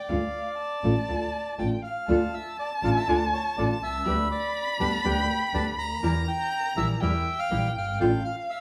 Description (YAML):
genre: tango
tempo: 122 BPM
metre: 4/4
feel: rubato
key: unclear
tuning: A4 = 440 Hz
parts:
  - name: bandoneon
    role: melody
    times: 0.0-8.6 s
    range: C#5 to Bb5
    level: -34 LUFS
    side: equal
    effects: none
  - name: warm violin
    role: second line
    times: 0.0-8.6 s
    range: F5 to B5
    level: -33 LUFS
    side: equal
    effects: none
  - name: nylon-string guitar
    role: accompaniment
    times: 0.1-8.1 s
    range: D3 to G4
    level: -30 LUFS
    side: equal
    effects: none
  - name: warm double bass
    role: bass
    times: 0.1-8.2 s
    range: G1 to E2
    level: -31 LUFS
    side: equal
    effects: none
  - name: bandoneon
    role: stabs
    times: 2.1-8.2 s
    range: D4 to B4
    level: -40 LUFS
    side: equal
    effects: none
room: wet stone room reverb, RT60 0.9 s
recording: band playing live in one room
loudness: -27 LUFS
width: mono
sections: 0.0-2.1 A section; 2.1-8.6 A section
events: none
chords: 0.1 Dm; 4.1 G/D; 6.0 Edim; 8.0 Dm/A